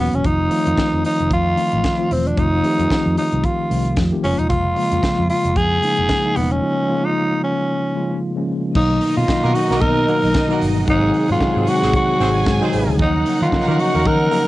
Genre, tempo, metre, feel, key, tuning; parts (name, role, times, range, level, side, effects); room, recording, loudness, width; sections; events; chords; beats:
disco; 113 BPM; 4/4; swing 56% on 16ths; A4 = 440 Hz
growling tenor saxophone; melody; 0.0-14.5 s; Cb4 to A#4; -19 LUFS; equal; cassette tape
mellow tine electric piano; accompaniment; 0.0-14.5 s; B2 to G4; -21 LUFS; left 1 dB; medium stereo tremolo, cassette tape
fingered electric bass; bass; 0.0-14.3 s; Eb1 to Eb3; -21 LUFS; equal
tight funk drum kit; drums; 0.1-14.5 s; crash cymbal, hi-hat, kick drum, snare drum; -24 LUFS; equal; cassette tape
mellow French horn section; sustained chords; 8.7-14.5 s; B2 to Eb4; -26 LUFS; right 2 dB; cassette tape
warm symphonic violin section; second line; 8.8-14.5 s; D#4 to Ab5; -26 LUFS; equal; cassette tape
mellow horn section; stabs; 9.4-14.4 s; A#3 to C5; -26 LUFS; right 3 dB; cassette tape
light reverb; home recording on cassette, nothing above 10.7 kHz; -15 LUFS; side -16 dB against mid
0.0-8.8 A section; 8.8-14.5 B section
break 6.6-8.8
0.2 F7; 4.2 Bbm7; 8.8 Bmaj7; 10.9 Ab7; 13.0 Ebm9
| 0.24 0.77 1.30 1.84 | 2.37 2.90 3.44 3.97 | 4.50 5.03 5.56 6.10 | 6.63 7.16 7.69 8.22 | 8.75 9.29 9.82 10.35 | 10.88 11.41 11.94 12.47 | 13.00 13.53 14.06